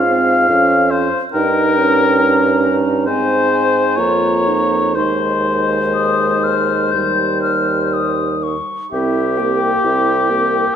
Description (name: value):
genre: classical, slow romantic movement for wind quintet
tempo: 59-72 BPM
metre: 4/4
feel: rubato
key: Ab major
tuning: A4 = 438 Hz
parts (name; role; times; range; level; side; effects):
- concert flute; melody; 0.0-10.8 s; E5 to G6; -22 LUFS; left 6 dB; none
- mellow oboe; second line; 0.0-10.8 s; G4 to F5; -16 LUFS; left 2 dB; none
- clear clarinet; accompaniment; 0.0-10.8 s; Eb4 to G4; -23 LUFS; right 5 dB; none
- warm French horn; accompaniment; 0.0-10.8 s; G3 to Eb4; -22 LUFS; right 2 dB; none
- dark bassoon; bass; 0.0-10.6 s; C2 to Ab2; -20 LUFS; right 3 dB; none
room: moderate scoring stage reverb, RT60 1.6 s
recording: none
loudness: -13 LUFS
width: side -8 dB against mid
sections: 0.0-10.8 A section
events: none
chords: 0.0 Db/Ab; 1.3 Eb7/G; 3.1 Ab; 5.0 Ab/Eb; 6.9 Eb; 8.9 C7